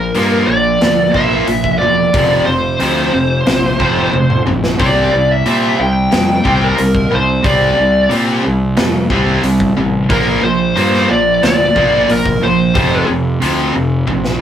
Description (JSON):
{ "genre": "hard rock", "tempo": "90 BPM", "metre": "4/4", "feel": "straight", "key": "unclear", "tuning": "A4 = 440 Hz", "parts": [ { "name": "high-gain lead guitar", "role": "melody", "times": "0.0-13.1 s", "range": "Bb4 to G5", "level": "-14 LUFS", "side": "left 1 dB", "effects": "distortion" }, { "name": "overdriven electric guitar", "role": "riff", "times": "0.0-14.4 s", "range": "F2 to C4", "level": "-17 LUFS", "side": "right 2 dB", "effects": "none" }, { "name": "tight distorted guitar", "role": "riff", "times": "0.0-14.4 s", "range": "F2 to C4", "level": "-19 LUFS", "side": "left 1 dB", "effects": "distortion" }, { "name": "fuzz fingered electric bass", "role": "bass", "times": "0.0-14.4 s", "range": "E1 to Bb2", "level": "-19 LUFS", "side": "equal", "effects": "overdrive" }, { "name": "big rock drum kit", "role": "drums", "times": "0.1-14.4 s", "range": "hi-hat, kick drum, snare drum, toms", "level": "-18 LUFS", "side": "equal", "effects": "none" } ], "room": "wet small room ambience, RT60 0.5 s", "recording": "rough rehearsal-room recording", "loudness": "-11 LUFS", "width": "side -10 dB against mid", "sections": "0.0-14.4 A section", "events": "drum fill 4.1-4.8, 14.1-14.4", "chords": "0.0 Bb; 2.1 F5; 4.8 Csus2; 10.1 Bb; 12.8 F5" }